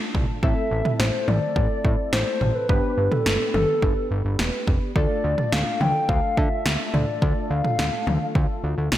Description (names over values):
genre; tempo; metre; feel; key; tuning
synth-pop; 106 BPM; 4/4; straight; unclear; A4 = 441 Hz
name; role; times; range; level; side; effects
funky polysynth comp; accompaniment; 0.0-9.0 s; A3 to B4; -30 LUFS; equal; chorus
fat analog bass; bass; 0.1-9.0 s; E1 to D3; -24 LUFS; equal; none
deep house drum kit; drums; 0.1-9.0 s; kick drum, snare drum, toms; -23 LUFS; equal; overdrive, gated reverb
hollow clarinet-like synth lead; melody; 0.4-8.6 s; A4 to G5; -26 LUFS; left 2 dB; chorus, digital delay
room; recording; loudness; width
moderate lush hall reverb, RT60 2.0 s; bright 1980s-style digital production; -20 LUFS; side -13 dB against mid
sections
0.0-9.0 A section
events
none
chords
0.4 Am; 2.7 G; 5.0 Dm